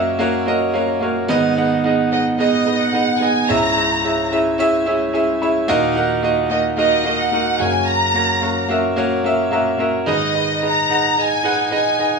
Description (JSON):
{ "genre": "pop", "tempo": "109 BPM", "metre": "4/4", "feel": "straight", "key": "G# minor", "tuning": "A4 = 439 Hz", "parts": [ { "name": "clear concert grand piano", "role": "accompaniment", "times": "0.0-12.2 s", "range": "C#2 to B5", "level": "-16 LUFS", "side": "right 1 dB", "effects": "none" }, { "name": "warm symphonic violin section", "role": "melody", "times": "2.1-12.2 s", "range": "D#5 to A#5", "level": "-18 LUFS", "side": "equal", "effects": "none" } ], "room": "moderate large studio reverb, RT60 0.9 s", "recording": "studio ambience", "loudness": "-15 LUFS", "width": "side -4 dB against mid", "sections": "0.0-10.1 A section; 10.1-12.2 B section", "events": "grand piano fill 4.6-5.7, 9.2-10.1", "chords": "0.0 F#; 1.3 G#m; 3.5 C#m; 5.7 D#m; 7.6 F#; 10.1 G#m" }